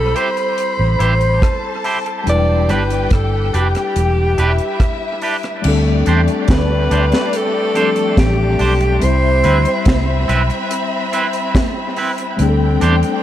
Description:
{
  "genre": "lovers rock reggae",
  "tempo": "71 BPM",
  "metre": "4/4",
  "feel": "straight",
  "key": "unclear",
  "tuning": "A4 = 439 Hz",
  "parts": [
    { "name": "clear alto saxophone", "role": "melody", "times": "0.0-10.3 s", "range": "G4 to D5", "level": "-20 LUFS", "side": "equal", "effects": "tape echo" },
    { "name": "warm studio string section", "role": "second line", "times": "0.0-13.2 s", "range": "A3 to B5", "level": "-23 LUFS", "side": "left 2 dB", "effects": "dub echo" },
    { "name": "mellow tine electric piano", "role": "accompaniment", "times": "0.0-13.2 s", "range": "F3 to C5", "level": "-22 LUFS", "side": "left 5 dB", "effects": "fast stereo tremolo, dub echo" },
    { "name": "vintage muted fingered electric bass", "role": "bass", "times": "0.0-13.0 s", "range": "E1 to E2", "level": "-16 LUFS", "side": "equal", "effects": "none" },
    { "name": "twangy electric guitar", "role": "stabs", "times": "0.1-13.0 s", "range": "C4 to C5", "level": "-23 LUFS", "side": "right 3 dB", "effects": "tremolo, dub echo" },
    { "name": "deep reggae drum kit", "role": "drums", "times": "0.2-13.2 s", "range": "crash cymbal, hi-hat, kick drum, rim click, snare drum", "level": "-19 LUFS", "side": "equal", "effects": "gated reverb, dub echo" }
  ],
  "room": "light reverb, small room ambience",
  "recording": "none",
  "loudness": "-13 LUFS",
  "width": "side -12 dB against mid",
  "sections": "0.0-5.6 A section; 5.6-13.2 B section",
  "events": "none",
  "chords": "0.0 Am7; 2.3 Em7; 5.6 D7sus4; 9.0 Cmaj7; 12.4 D7sus4"
}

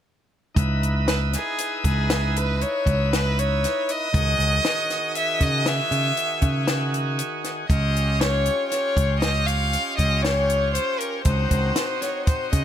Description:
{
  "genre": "progressive instrumental, band music in an uneven meter",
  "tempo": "118 BPM",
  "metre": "7/4",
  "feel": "straight",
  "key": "C# minor",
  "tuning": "A4 = 440 Hz",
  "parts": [
    { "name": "bright tonewheel organ", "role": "accompaniment", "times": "0.5-12.6 s", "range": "D#3 to B4", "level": "-29 LUFS", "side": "right 1 dB", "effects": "overdrive, slow rotary speaker" },
    { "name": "picked electric bass", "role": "bass", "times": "0.6-12.6 s", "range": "C#2 to C#3", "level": "-23 LUFS", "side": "equal", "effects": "none" },
    { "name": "compact cocktail drum kit", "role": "drums", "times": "0.6-12.6 s", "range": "hi-hat, kick drum, snare drum", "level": "-24 LUFS", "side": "equal", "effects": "none" },
    { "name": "rich violin", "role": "melody", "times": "1.1-12.6 s", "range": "G#4 to E#5", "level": "-24 LUFS", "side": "left 1 dB", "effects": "digital delay" }
  ],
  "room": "light reverb",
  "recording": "none",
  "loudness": "-20 LUFS",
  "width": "side -10 dB against mid",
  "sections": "0.6-12.6 A section",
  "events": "none",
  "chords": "0.6 C#m7; 4.1 Emaj7/C#; 7.7 D#7/C#; 11.3 G#7/C# (rootless)"
}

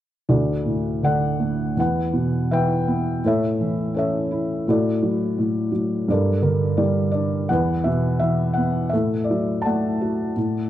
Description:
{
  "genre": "classical, lyrical solo piano",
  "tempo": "83 BPM",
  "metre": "4/4",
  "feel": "rubato",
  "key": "D major",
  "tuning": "A4 = 441 Hz",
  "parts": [
    { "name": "felt-muted upright piano", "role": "solo", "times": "0.3-10.7 s", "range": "D2 to A5", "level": "-19 LUFS", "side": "equal", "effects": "none" }
  ],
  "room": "moderate concert hall reverb, RT60 2.3 s",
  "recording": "dark, warm production",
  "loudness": "-19 LUFS",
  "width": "side -12 dB against mid",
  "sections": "0.3-10.7 A section",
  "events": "none",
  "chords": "0.3 D; 1.8 Em; 3.2 A; 4.7 D/A; 6.1 Gmadd9; 7.5 E5; 8.9 D/A"
}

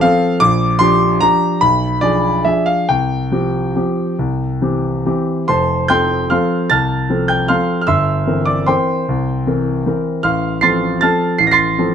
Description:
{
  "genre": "classical, piano waltz",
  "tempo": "134-162 BPM",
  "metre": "3/4",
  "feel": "rubato",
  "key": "F major",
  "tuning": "A4 = 440 Hz",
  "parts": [
    { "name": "warm grand piano", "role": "solo", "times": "0.0-11.9 s", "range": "F1 to C7", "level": "-13 LUFS", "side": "equal", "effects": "none" }
  ],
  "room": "light reverb",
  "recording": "dark, warm production",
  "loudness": "-13 LUFS",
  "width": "side -8 dB against mid",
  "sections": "0.0-5.5 A section; 5.5-11.9 B section",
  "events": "none",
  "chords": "0.4 Gm7/Bb; 1.6 Bdim7; 2.9 Csus4; 4.2 C; 5.5 F; 7.9 C7/G; 10.2 F/A"
}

